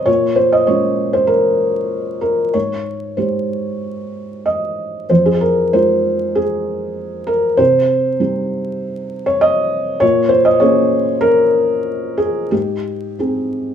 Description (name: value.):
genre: neoclassical minimalist piano.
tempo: 96 BPM.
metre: 4/4.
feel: uneven beats, rubato.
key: unclear.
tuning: A4 = 440 Hz.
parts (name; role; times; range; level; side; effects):
felt-muted upright piano; solo; 0.0-13.7 s; F2 to Eb5; -14 LUFS; equal; none.
room: moderate studio reverb, RT60 0.7 s.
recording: band playing live in one room, vinyl crackle.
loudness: -14 LUFS.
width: side -8 dB against mid.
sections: 0.0-13.7 A section.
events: none.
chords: 0.1 Bbm7; 2.5 Abmaj7; 5.1 Fm7; 7.6 Cm; 10.0 Bbm7; 12.5 Abmaj7.